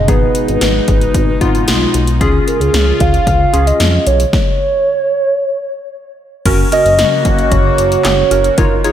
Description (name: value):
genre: synth-pop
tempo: 113 BPM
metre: 4/4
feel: straight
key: F# major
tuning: A4 = 440 Hz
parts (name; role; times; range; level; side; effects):
- hollow clarinet-like synth lead; melody; 0.0-8.9 s; G#4 to E#5; -15 LUFS; right 2 dB; chorus, slapback echo
- phased analog pad; sustained chords; 0.0-8.9 s; B2 to F#4; -19 LUFS; equal; phaser, chorus
- chorused synth bass; bass; 0.0-8.8 s; F#1 to E#2; -16 LUFS; left 1 dB; none
- warm analog keys; accompaniment; 0.1-8.9 s; B3 to C#5; -19 LUFS; left 2 dB; chorus, slapback echo
- 80s electronic pad drums; drums; 0.1-8.9 s; crash cymbal, handclaps, hi-hat, kick drum, snare drum; -15 LUFS; left 1 dB; none
room: moderate lush hall reverb, RT60 1.9 s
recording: big arena sound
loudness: -10 LUFS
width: side -10 dB against mid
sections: 0.0-6.5 A section; 6.5-8.9 B section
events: stop 4.3-6.5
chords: 0.0 G#m; 2.2 C#; 6.5 F#